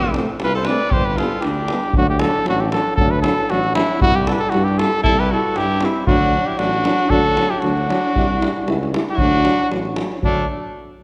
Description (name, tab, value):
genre	balkan folk, Balkan brass band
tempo	116 BPM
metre	2/4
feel	swing 55% on 16ths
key	D mixolydian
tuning	A4 = 437 Hz
part	clear flugelhorn	melody	0.0-10.5 s	D4 to D5	-22 LUFS	equal	none
part	bright alto saxophone	second line	0.0-2.0, 5.0-10.5 s	A3 to B4	-28 LUFS	equal	none
part	mellow tuba	bass	0.0-10.5 s	F1 to G2	-26 LUFS	equal	none
part	davul	percussion	0.0-10.5 s	none	-25 LUFS	equal	none
part	mellow euphonium	accompaniment	0.2-10.5 s	F#3 to A3	-28 LUFS	equal	none
part	warm euphonium	accompaniment	0.2-10.5 s	B3 to E4	-29 LUFS	equal	none
room	wet concert hall reverb, RT60 1.8 s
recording	none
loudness	-18 LUFS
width	mono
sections	0.0-2.0 A section; 2.0-10.2 B section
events	none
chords	0.0 F; 0.9 G; 2.0 D; 4.0 C; 6.1 D; 8.1 C; 9.2 D